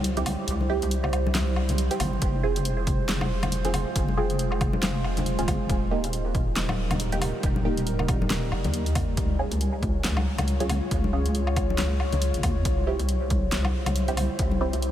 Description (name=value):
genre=deep dubstep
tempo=138 BPM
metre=4/4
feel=swing 58% on 16ths, half-time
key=F minor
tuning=A4 = 440 Hz
part: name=deep dark ambient pad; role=sustained chords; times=0.0-14.9 s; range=G3 to Db5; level=-32 LUFS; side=equal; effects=chorus, built-in reverb
part: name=deep soft wobble bass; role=bass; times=0.0-14.9 s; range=Eb1 to Eb2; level=-27 LUFS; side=equal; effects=chorus
part: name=deep house drum kit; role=drums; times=0.0-14.9 s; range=handclaps, hi-hat, snare drum, woodblock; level=-32 LUFS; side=equal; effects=overdrive
part: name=filtered dub chord stab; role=stabs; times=0.2-14.7 s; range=Bb3 to Ab4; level=-33 LUFS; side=right 3 dB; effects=phaser, lush chorus, dub echo
part: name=congas and bongos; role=percussion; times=0.2-14.8 s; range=none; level=-33 LUFS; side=left 3 dB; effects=dub echo
part: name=electronic kick drum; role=drums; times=2.2-14.5 s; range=none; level=-28 LUFS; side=equal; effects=overdrive
room=light reverb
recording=none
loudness=-23 LUFS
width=side -11 dB against mid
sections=0.0-14.9 A section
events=kick drops out 0.5-2.2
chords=0.0 C; 2.2 Fm; 5.7 Eb; 9.2 Db; 12.7 C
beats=0.04 | 0.48 0.91 1.35 1.78 | 2.22 2.65 3.09 3.52 | 3.96 4.39 4.83 5.26 | 5.70 6.13 6.57 7.00 | 7.43 7.87 8.30 8.74 | 9.17 9.61 10.04 10.48 | 10.91 11.35 11.78 12.22 | 12.65 13.09 13.52 13.96 | 14.39 14.83